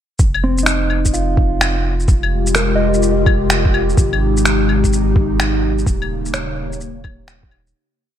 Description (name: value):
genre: future garage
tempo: 127 BPM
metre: 4/4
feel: swing 64% on 16ths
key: F minor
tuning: A4 = 437 Hz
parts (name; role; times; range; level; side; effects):
- soft dub sub bass; bass; 0.2-7.7 s; Eb1 to Ab1; -19 LUFS; equal; sidechain pumping
- electronic kick drum; drums; 0.2-7.5 s; none; -16 LUFS; equal; overdrive, small room ambience
- electronic shaker, claves and finger snaps; drums; 0.2-7.7 s; none; -20 LUFS; left 1 dB; overdrive, small room ambience, gated reverb
- mellow electric guitar; accompaniment; 0.4-7.7 s; C4 to Eb5; -22 LUFS; right 2 dB; sidechain pumping, ping-pong delay
- airy breathy pad; sustained chords; 2.3-7.7 s; C3 to G4; -18 LUFS; left 2 dB; chorus, sidechain pumping
room: light reverb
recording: bright 1980s-style digital production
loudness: -14 LUFS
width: side -10 dB against mid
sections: 0.2-7.8 groove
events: fade-out 5.2-7.8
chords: 0.2 Fmadd9; 4.0 Abmaj7; 5.9 Eb7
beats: | 0.19 0.66 1.14 1.61 | 2.08 2.55 3.03 3.50 | 3.97 4.44 4.92 5.39 | 5.86 6.33 6.81 7.28